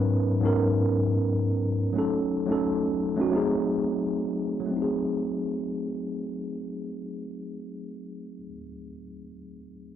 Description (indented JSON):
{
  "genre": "hip hop",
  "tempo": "87 BPM",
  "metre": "4/4",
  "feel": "swing 56% on 16ths",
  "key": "unclear",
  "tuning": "A4 = 436 Hz",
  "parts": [
    { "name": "mellow tine electric piano", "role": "accompaniment", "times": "0.0-10.0 s", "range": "G#2 to B4", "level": "-26 LUFS", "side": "equal", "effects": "medium stereo tremolo, cassette tape, low-pass filter" }
  ],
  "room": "wet studio reverb, RT60 0.6 s",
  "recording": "none",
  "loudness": "-24 LUFS",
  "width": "side -10 dB against mid",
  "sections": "0.0-4.7 A section; 4.7-7.5 B section",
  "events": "none",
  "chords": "0.0 G#m11; 1.9 D#m7b5; 3.3 G#7b9",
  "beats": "0.56 1.25 | 1.94 2.63 3.32 4.01 | 4.70 5.39 6.08 6.77"
}